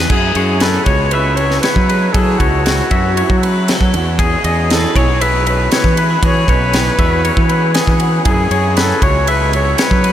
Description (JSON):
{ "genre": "math rock and midwest emo", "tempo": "118 BPM", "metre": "4/4", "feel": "straight", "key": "unclear", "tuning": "A4 = 440 Hz", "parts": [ { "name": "electric guitar through a small old amp", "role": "accompaniment", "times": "0.0-10.1 s", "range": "E2 to F#4", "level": "-23 LUFS", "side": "right 4 dB", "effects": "analog chorus" }, { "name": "twangy electric guitar", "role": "arpeggios", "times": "0.0-10.1 s", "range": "G#4 to E5", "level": "-19 LUFS", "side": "left 4 dB", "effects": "analog delay" }, { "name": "fuzz fingered electric bass", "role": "bass", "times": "0.0-10.1 s", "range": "B1 to F#3", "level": "-16 LUFS", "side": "equal", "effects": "overdrive" }, { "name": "breathy trumpet", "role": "melody", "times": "0.1-10.1 s", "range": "F#4 to C#5", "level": "-18 LUFS", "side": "equal", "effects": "analog delay" }, { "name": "crisp fusion drum kit", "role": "drums", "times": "0.1-10.1 s", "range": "crash cymbal, kick drum, ride cymbal, snare drum", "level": "-16 LUFS", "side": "equal", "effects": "none" } ], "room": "moderate huge ambient reverb, RT60 8.6 s", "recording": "dreamy mix soaked in reverb", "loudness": "-11 LUFS", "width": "side -10 dB against mid", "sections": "0.1-10.1 A section", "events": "none", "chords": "0.1 F#m11; 3.9 E69; 8.3 F#9sus4" }